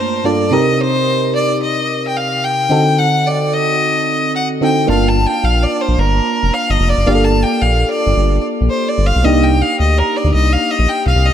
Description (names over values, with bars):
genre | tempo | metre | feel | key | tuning
R&B | 110 BPM | 4/4 | swing 64% on 16ths | G minor | A4 = 442 Hz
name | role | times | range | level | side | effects
clear fiddle | melody | 0.0-11.3 s | Bb4 to A5 | -16 LUFS | equal | none
FM electric piano | accompaniment | 0.0-11.3 s | G2 to A5 | -17 LUFS | equal | chorus, phaser
round analog bass | bass | 4.9-11.3 s | F1 to D2 | -14 LUFS | equal | none
room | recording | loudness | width
moderate plate reverb, RT60 3.7 s | dark, warm production | -12 LUFS | side -10 dB against mid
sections
0.0-11.3 A section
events
none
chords
0.0 Gm7; 0.5 Cm7; 2.7 D7b9; 4.9 Gm7; 9.2 Cm7